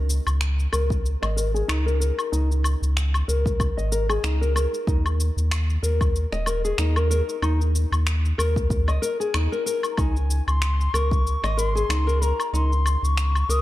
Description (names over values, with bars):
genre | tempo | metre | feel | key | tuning
organic downtempo | 94 BPM | 4/4 | swing 56% on 16ths | unclear | A4 = 442 Hz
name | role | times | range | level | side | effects
warm sub bass | bass | 0.0-13.6 s | Eb1 to Eb2 | -22 LUFS | equal | sidechain pumping
electronic cabasa, woodblock and finger snaps | drums | 0.1-13.6 s | none | -29 LUFS | left 1 dB | none
nylon-string guitar | arpeggios | 0.7-13.6 s | Eb4 to Eb5 | -28 LUFS | left 2 dB | low-pass filter, digital delay
electronic kick drum | drums | 0.9-11.2 s | none | -24 LUFS | equal | none
bansuri | melody | 9.9-13.6 s | Ab5 to Eb6 | -28 LUFS | left 2 dB | digital delay
room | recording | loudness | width
light reverb | dark, warm production | -20 LUFS | side -15 dB against mid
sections
0.0-13.6 A section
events
filter sweep on nylon-string guitar 0.0-13.6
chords
0.0 Db5; 4.9 Eb5; 10.0 Db5